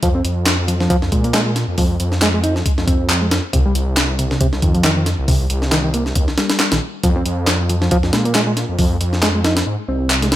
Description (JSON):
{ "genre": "breakbeat, breaks", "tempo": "137 BPM", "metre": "4/4", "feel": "swing 56% on 16ths", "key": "C minor", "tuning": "A4 = 444 Hz", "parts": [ { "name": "reed electric piano", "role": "riff", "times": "0.0-10.3 s", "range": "C3 to Eb4", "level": "-20 LUFS", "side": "equal", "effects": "overdrive, tube saturation, low-pass filter, ping-pong delay" }, { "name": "detuned saw bass", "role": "bass", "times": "0.0-10.4 s", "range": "Bb1 to Bb2", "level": "-19 LUFS", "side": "equal", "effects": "tube saturation" }, { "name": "breakbeat sampler-style drum kit", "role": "drums", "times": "0.0-10.4 s", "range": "hi-hat, kick drum, snare drum", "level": "-18 LUFS", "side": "equal", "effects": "studio reverb" }, { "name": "electronic handclaps", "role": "drums", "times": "0.5-10.2 s", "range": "none", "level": "-21 LUFS", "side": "equal", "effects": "overdrive, studio reverb" } ], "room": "digital ambience", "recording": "none", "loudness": "-14 LUFS", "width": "side -14 dB against mid", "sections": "0.0-10.4 A section", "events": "none", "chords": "0.0 N.C.; 3.5 Cm; 7.0 Fm" }